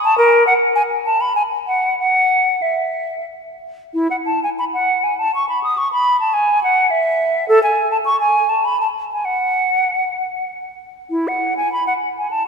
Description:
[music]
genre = classical, baroque-style fantasia for unaccompanied flute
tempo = 87-107 BPM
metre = 3/4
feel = rubato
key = unclear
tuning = A4 = 440 Hz
[part]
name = hollow concert flute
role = solo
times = 0.0-12.4 s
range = E4 to D#6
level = -15 LUFS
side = equal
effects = none
[sound]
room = wet church reverb, RT60 2.6 s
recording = minimal, uncompressed stereo recording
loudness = -15 LUFS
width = side -5 dB against mid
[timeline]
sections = 0.0-3.9 A section; 3.9-12.5 B section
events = none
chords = none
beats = | 0.17 0.77 1.36 | 1.99 2.63 3.26 | 3.94 4.58 5.17 | 5.76 6.34 6.91 | 7.48 8.05 8.64 | 9.25 9.86 10.46 | 11.10 11.71 12.29

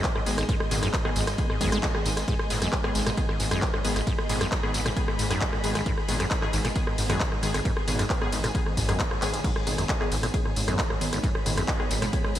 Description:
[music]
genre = driving peak-time techno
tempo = 134 BPM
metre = 4/4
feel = straight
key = G# minor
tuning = A4 = 440 Hz
[part]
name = acid bass, saw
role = riff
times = 0.0-12.4 s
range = G#1 to G#3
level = -32 LUFS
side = equal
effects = analog chorus, sidechain pumping, digital delay
[part]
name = wavetable chord stab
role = stabs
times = 0.0-12.3 s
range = D#3 to G#4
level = -34 LUFS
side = left 2 dB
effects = sidechain pumping, digital delay
[part]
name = deep dark ambient pad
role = drone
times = 0.0-12.4 s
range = G#2 to G#3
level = -36 LUFS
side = right 1 dB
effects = chorus, built-in reverb, sidechain pumping
[part]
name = electronic kick drum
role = drums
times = 0.0-12.2 s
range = none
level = -28 LUFS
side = equal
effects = none
[part]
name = techno drum kit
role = drums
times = 0.0-12.4 s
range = crash cymbal, handclaps, hi-hat, ride cymbal, rim click, tambourine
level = -30 LUFS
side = equal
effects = sidechain pumping on hats, sidechain pumping on cymbals, sidechain pumping on perc, gated reverb
[part]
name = rich symphonic string section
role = texture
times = 0.0-12.4 s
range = B3 to B5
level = -37 LUFS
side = left 1 dB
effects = sidechain pumping
[part]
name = detuned saw bass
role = bass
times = 0.3-12.4 s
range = G#1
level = -30 LUFS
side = equal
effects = tube saturation, sidechain pumping
[sound]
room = light reverb, digital ambience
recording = bright 1980s-style digital production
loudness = -24 LUFS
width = side -12 dB against mid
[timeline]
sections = 0.0-12.4 A section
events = drum fill 9.2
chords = 0.0 G#m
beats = 0.04 | 0.49 0.94 1.38 1.83 | 2.28 2.73 3.17 3.62 | 4.07 4.52 4.96 5.41 | 5.86 6.31 6.76 7.20 | 7.65 8.10 8.55 8.99 | 9.44 9.89 10.34 10.79 | 11.23 11.68 12.13

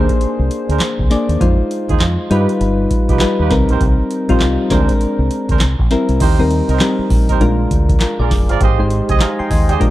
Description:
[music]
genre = R&B, new jack swing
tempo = 100 BPM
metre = 4/4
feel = swing 62% on 16ths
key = unclear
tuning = A4 = 439 Hz
[part]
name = soft electric-piano-like synth keys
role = accompaniment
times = 0.0-9.9 s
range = G3 to C6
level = -17 LUFS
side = left 2 dB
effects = chorus
[part]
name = warm horn section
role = stabs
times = 0.0-9.8 s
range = D4 to Eb5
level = -24 LUFS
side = right 10 dB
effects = none
[part]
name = deep dub fingered electric bass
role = bass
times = 0.0-9.9 s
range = F1 to G2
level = -17 LUFS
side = equal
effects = none
[part]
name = booming analog drum machine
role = drums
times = 0.1-9.9 s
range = crash cymbal, handclaps, hi-hat, kick drum, snare drum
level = -16 LUFS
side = equal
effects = none
[sound]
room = light reverb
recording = dark, warm production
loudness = -12 LUFS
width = side -15 dB against mid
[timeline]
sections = 0.0-6.2 A section; 6.2-9.9 B section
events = none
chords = 0.0 Bb9; 1.4 Fm7; 2.3 Gaug7; 3.5 Cm7; 4.7 Bb9/D; 5.6 C7; 6.2 Eb6; 7.4 Bb7; 8.6 Abmaj7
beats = 0.21 0.81 | 1.41 2.01 2.61 3.21 | 3.81 4.41 5.01 5.61 | 6.21 6.81 7.41 8.01 | 8.61 9.21 9.81

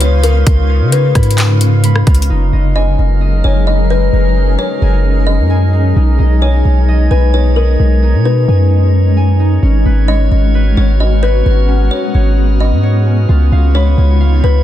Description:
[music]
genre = hip hop, atmospheric cloud-rap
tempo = 131 BPM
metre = 4/4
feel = half-time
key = F# major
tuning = A4 = 441 Hz
[part]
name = kalimba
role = melody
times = 0.0-14.6 s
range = A#4 to D#5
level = -20 LUFS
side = left 6 dB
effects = low-pass filter, ping-pong delay
[part]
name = granular cloud pad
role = sustained chords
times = 0.0-14.6 s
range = C#3 to E#5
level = -19 LUFS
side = left 1 dB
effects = built-in reverb, tremolo, sidechain pumping
[part]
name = concert harp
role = arpeggios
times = 0.0-14.6 s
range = C#4 to B5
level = -25 LUFS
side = equal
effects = low-pass filter, ping-pong delay
[part]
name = long sustained 808-style bass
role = bass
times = 0.0-14.6 s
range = F#1 to C#3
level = -10 LUFS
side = equal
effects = none
[part]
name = trap drum kit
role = drums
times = 0.0-2.3 s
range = handclaps, hi-hat, kick drum, rim click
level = -14 LUFS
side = equal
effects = none
[part]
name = drifting glass-harmonics texture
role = texture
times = 0.0-14.6 s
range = G#3 to D#5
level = -25 LUFS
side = right 2 dB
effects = chorus, built-in reverb
[sound]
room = little or no reverb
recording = dense, heavily limited modern master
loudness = -9 LUFS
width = side -12 dB against mid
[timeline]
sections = 0.0-2.3 A section; 2.3-14.6 B section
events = none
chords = 0.0 C#7; 2.3 F#69; 6.0 B69; 9.6 G#m11; 13.3 C#7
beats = 0.01 | 0.47 0.92 1.38 1.84 | 2.30 2.76 3.21 3.67 | 4.13 4.59 5.05 5.50 | 5.96 6.42 6.88 7.34 | 7.79 8.25 8.71 9.17 | 9.63 10.08 10.54 11.00 | 11.46 11.92 12.38 12.83 | 13.29 13.75 14.21

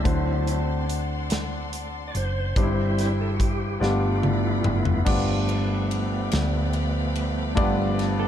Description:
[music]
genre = slow gospel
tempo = 48 BPM (dotted quarters)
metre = 6/8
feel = straight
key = unclear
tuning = A4 = 440 Hz
[part]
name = clear grand piano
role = accompaniment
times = 0.0-8.3 s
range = G2 to D5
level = -27 LUFS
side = left 2 dB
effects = none
[part]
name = bright tonewheel organ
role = sustained chords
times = 0.0-8.3 s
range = F3 to D5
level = -29 LUFS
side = right 3 dB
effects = fast rotary speaker
[part]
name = rich studio string section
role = sustained chords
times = 0.0-8.3 s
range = C5 to C6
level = -37 LUFS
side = left 1 dB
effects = none
[part]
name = hollow-body short-scale fingered electric bass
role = bass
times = 0.0-8.3 s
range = F#1 to D2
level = -26 LUFS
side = equal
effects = none
[part]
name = modern studio drum kit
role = drums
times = 0.1-8.2 s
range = crash cymbal, hi-hat, kick drum, ride cymbal, snare drum, toms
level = -27 LUFS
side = equal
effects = none
[part]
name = clean electric guitar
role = second line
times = 8.2-8.3 s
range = A4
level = -28 LUFS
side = right 9 dB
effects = lush chorus
[sound]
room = light reverb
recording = dark, warm production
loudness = -22 LUFS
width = side -10 dB against mid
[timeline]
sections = 0.0-5.1 A section; 5.1-8.3 B section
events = tonewheel organ solo 0.0-5.1, 5.1-8.3; drum fill 3.8-5.1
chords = 0.1 D7; 2.6 C/G; 3.8 G7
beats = | 0.06 1.31 | 2.56 3.82 | 5.07 6.32 | 7.58

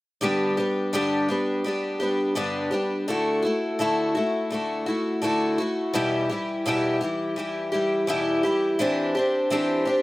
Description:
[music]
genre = rock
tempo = 84 BPM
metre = 4/4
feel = straight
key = G major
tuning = A4 = 440 Hz
[part]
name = picked twelve-string acoustic guitar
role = solo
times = 0.2-10.0 s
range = E2 to G4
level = -22 LUFS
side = equal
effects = none
[sound]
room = light reverb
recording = recorded outdoors, with no room sound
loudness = -22 LUFS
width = side -18 dB against mid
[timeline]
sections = 0.2-10.0 A section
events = none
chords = 0.2 G; 3.1 Dadd9; 5.9 Em; 8.8 Cadd9/E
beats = | 0.23 0.94 1.65 2.37 | 3.08 3.79 4.50 5.22 | 5.93 6.65 7.36 8.07 | 8.79 9.50

